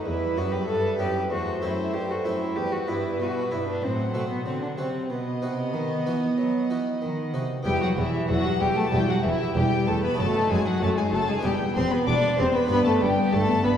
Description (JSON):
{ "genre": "classical, baroque-style concerto movement with solo episodes", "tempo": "95 BPM", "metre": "4/4", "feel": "straight", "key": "E minor", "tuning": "A4 = 439 Hz", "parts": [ { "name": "rich cello", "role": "melody", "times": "0.0-13.8 s", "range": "E3 to A4", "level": "-27 LUFS", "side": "left 1 dB", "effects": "none" }, { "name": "warm chamber violin section", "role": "melody", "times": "0.0-13.8 s", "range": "E5 to D6", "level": "-34 LUFS", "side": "left 3 dB", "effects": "none" }, { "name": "rich chamber violin section", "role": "second line", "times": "0.0-13.7 s", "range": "E4 to D#5", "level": "-29 LUFS", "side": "left 1 dB", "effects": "none" }, { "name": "dark chamber viola section", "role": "accompaniment", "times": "0.0-13.8 s", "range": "F#3 to G4", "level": "-31 LUFS", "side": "right 1 dB", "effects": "none" }, { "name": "harpsichord", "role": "accompaniment", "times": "0.0-13.8 s", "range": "E2 to G4", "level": "-32 LUFS", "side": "equal", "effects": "none" }, { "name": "warm chamber cello section", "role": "bass", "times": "0.1-13.7 s", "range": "E2 to F#3", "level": "-31 LUFS", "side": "right 2 dB", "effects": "none" }, { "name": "rich chamber double bass section", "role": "bass", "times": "7.7-13.7 s", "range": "E1 to G1", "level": "-30 LUFS", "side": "right 1 dB", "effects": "none" } ], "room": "wet scoring stage reverb, RT60 1.8 s", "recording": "heard from further back in the room", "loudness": "-22 LUFS", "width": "side -9 dB against mid", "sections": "0.0-7.7 A section; 7.7-13.8 B section", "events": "none", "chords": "0.1 Em; 1.3 Am/E; 2.6 Em; 3.8 F#dim/A; 5.1 B; 7.7 Em; 10.2 D#dim/F#; 11.4 Em; 12.7 G" }